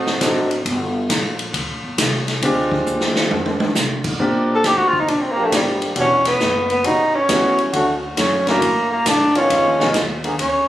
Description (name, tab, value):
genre	jazz, big band swing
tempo	136 BPM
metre	4/4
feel	swing 67% on 8ths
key	unclear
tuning	A4 = 440 Hz
part	bright saxophone section	melody	0.0-0.5 s	A3 to C5	-28 LUFS	equal	none
part	muted trombone section	second line	0.0-0.5 s	F#3 to C4	-29 LUFS	right 4 dB	none
part	upright bass	bass	0.0-10.7 s	E1 to C3	-27 LUFS	equal	none
part	swinging big-band drum kit	drums	0.1-10.5 s	crash cymbal, hi-hat, kick drum, ride cymbal, snare drum, toms	-21 LUFS	equal	none
part	clear baby grand piano	accompaniment	0.2-9.9 s	F3 to A4	-21 LUFS	equal	none
part	breathy tenor saxophone	melody	4.5-10.7 s	G3 to A4	-17 LUFS	equal	none
part	clear trombone section	sustained chords	5.4-10.3 s	C#3 to Ab4	-22 LUFS	equal	none
room	light reverb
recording	recorded on a phone in the room, club reverb, compression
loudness	-16 LUFS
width	side -13 dB against mid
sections	0.0-4.2 A section; 4.2-10.7 B section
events	drum fill 2.9-3.8; tenor saxophone solo 4.2-10.7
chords	0.0 D7b9; 0.7 Gm; 2.4 Fm13/D; 4.2 Bb6; 6.0 Em9; 6.8 A13; 7.7 Dmaj7; 9.5 Fm7b5